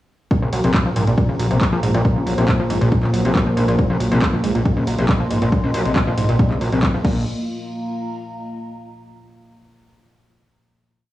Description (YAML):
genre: driving peak-time techno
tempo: 138 BPM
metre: 4/4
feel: straight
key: unclear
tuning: A4 = 440 Hz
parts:
  - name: tight sequenced synth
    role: riff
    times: 0.3-7.2 s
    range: Ab2 to Gb3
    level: -22 LUFS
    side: equal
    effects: chorus, tube saturation, sidechain pumping, cassette tape, analog delay
  - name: analog drone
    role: drone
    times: 1.0-7.3 s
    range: Bb2 to F3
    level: -27 LUFS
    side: left 2 dB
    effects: none
  - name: electronic kick drum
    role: drums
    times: 0.3-7.1 s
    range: none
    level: -19 LUFS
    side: equal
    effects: cassette tape
  - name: punchy analog drum machine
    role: drums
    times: 0.3-7.1 s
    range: crash cymbal, handclaps, hi-hat, ride cymbal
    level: -28 LUFS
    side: equal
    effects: sidechain pumping on hats, cassette tape, sidechain pumping on cymbals
  - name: warbly tape-like pad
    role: texture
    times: 1.0-9.0 s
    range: Bb3 to C6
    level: -25 LUFS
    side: right 1 dB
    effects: chorus, built-in reverb, sidechain pumping, cassette tape
  - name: gritty driven synth bass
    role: bass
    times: 0.4-7.2 s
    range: Bb1 to C2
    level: -21 LUFS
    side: left 1 dB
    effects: tube saturation, sidechain pumping
room: light reverb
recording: home recording on cassette, studio reverb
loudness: -16 LUFS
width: side -15 dB against mid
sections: 0.3-7.3 drop; 7.3-9.0 final chord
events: drop 0.3-7.3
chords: 0.3 Bb5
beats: | 0.31 0.74 1.18 1.61 | 2.05 2.48 2.92 3.35 | 3.79 4.22 4.66 5.09 | 5.53 5.96 6.39 6.83 | 7.26 7.70 8.13 8.57